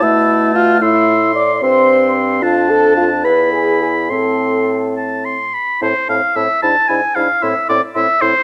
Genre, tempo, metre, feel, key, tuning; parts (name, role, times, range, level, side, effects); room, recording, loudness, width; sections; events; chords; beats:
quick classical-period movement for wind quintet; 69-76 BPM (dotted quarters); 6/8; rubato; A minor; A4 = 440 Hz
mellow hollow concert flute; melody; 0.0-8.3 s; F5 to F6; -23 LUFS; equal
clear oboe; second line; 0.0-8.4 s; C5 to C6; -19 LUFS; equal
clear clarinet; accompaniment; 0.0-8.3 s; A3 to E4; -24 LUFS; equal
warm French horn; accompaniment; 0.0-8.3 s; C4 to D5; -18 LUFS; equal
mellow bassoon; bass; 0.0-8.3 s; E2 to B2; -23 LUFS; equal
light reverb; close, detailed microphones; -14 LUFS; mono
0.0-5.8 A section; 5.8-8.4 B section
0.0 A5; 0.8 Am; 2.4 Dm/F; 3.2 E5; 4.1 Am; 6.6 E7/G#; 7.4 Am
0.02 | 0.81 1.62 | 2.42 3.24 | 4.10 4.96 | 5.82 6.63 | 7.43 8.22